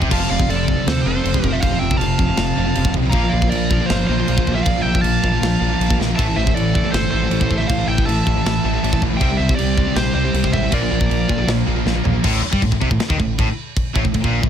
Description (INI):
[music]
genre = heavy metal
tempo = 158 BPM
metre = 4/4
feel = straight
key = A phrygian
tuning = A4 = 440 Hz
[part]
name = cranked stack guitar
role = riff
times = 0.0-14.5 s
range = F2 to C4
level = -26 LUFS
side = equal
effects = overdrive
[part]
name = high-gain distorted guitar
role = riff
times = 0.0-14.5 s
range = F2 to C4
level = -24 LUFS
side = left 10 dB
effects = distortion
[part]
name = high-gain distorted guitar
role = riff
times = 0.0-14.5 s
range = F2 to C4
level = -23 LUFS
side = right 11 dB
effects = distortion
[part]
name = growling picked electric bass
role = bass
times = 0.0-14.5 s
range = F1 to G2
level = -22 LUFS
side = equal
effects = overdrive
[part]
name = tight metal drum kit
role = drums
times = 0.0-14.5 s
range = crash cymbal, kick drum, snare drum, toms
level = -21 LUFS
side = equal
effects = none
[part]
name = high-gain lead guitar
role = melody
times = 0.1-11.5 s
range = C5 to Bb5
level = -24 LUFS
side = equal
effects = distortion, tape echo
[part]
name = high-gain lead guitar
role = second line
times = 0.1-11.5 s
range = F4 to F5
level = -28 LUFS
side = right 4 dB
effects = distortion
[sound]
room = small room ambience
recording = none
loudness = -15 LUFS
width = side -9 dB against mid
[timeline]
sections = 0.1-12.2 A section; 12.2-14.5 B section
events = drum fill 6.0, 11.9-12.2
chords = 0.1 F; 3.1 Bb; 6.2 Am; 9.2 C5; 10.7 Bb; 12.2 Am